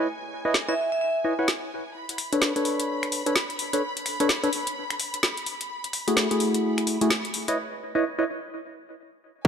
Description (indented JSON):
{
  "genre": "UK garage, two-step garage",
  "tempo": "128 BPM",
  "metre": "4/4",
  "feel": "swing 61% on 16ths",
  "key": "B dorian",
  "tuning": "A4 = 439 Hz",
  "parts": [
    { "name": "clear symphonic violin section", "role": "sustained chords", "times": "0.0-9.5 s", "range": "G#5 to B5", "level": "-35 LUFS", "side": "equal", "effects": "sidechain pumping" },
    { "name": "percussive organ stab", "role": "stabs", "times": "0.0-9.5 s", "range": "A3 to F#5", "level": "-26 LUFS", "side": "equal", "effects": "chorus, tape echo" },
    { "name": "garage drum kit", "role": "drums", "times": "0.5-7.6 s", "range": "finger snaps, hi-hat, snare drum", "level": "-26 LUFS", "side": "left 1 dB", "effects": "none" },
    { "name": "vibraphone with hard mallets", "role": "melody", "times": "0.7-1.1 s", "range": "E5", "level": "-28 LUFS", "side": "right 1 dB", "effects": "tape echo" }
  ],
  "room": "moderate lush hall reverb, RT60 1.8 s",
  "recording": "low-pass filter",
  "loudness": "-23 LUFS",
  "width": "side -7 dB against mid",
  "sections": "0.0-1.9 A section; 1.9-9.4 B section",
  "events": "filter sweep 0.0-1.9; build-up 1.9-9.4; filter sweep on synth stab 1.9-9.4; break 7.6-9.4",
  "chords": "0.0 C#m9; 1.9 Bm9; 5.5 F#m9; 7.3 C#m9"
}